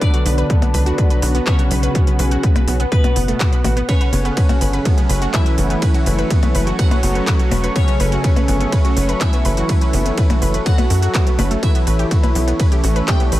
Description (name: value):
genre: melodic techno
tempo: 124 BPM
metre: 4/4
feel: straight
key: unclear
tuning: A4 = 440 Hz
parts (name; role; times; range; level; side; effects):
- analog synth brass; melody; 0.0-13.4 s; B2 to G4; -23 LUFS; equal; chorus, sidechain pumping, analog delay
- glassy wavetable pluck; second line; 0.0-13.4 s; B4 to G5; -31 LUFS; left 2 dB; chorus, vintage 12-bit sampler grit, sidechain pumping, analog delay
- dark analog pad; sustained chords; 0.0-13.4 s; A4 to C#6; -28 LUFS; equal; chorus, sidechain pumping
- wide unison pluck; arpeggios; 0.0-13.4 s; A3 to B5; -26 LUFS; equal; sidechain pumping, dub echo
- brassy analog pad; stabs; 0.0-13.4 s; E3 to F#4; -26 LUFS; right 2 dB; chorus, sidechain pumping, analog delay
- electronic kick drum; drums; 0.0-13.2 s; none; -16 LUFS; equal; none
- techno drum kit; drums; 0.0-13.4 s; handclaps, hi-hat, percussion blips, ride cymbal; -25 LUFS; left 2 dB; analog delay
- tight sequencer bass; bass; 0.3-13.4 s; E1 to F#2; -18 LUFS; equal; sidechain pumping
room: little or no reverb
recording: echo-heavy mix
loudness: -14 LUFS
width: side -15 dB against mid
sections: 0.0-13.4 A section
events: none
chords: 0.0 Bm; 3.9 F#m; 11.6 A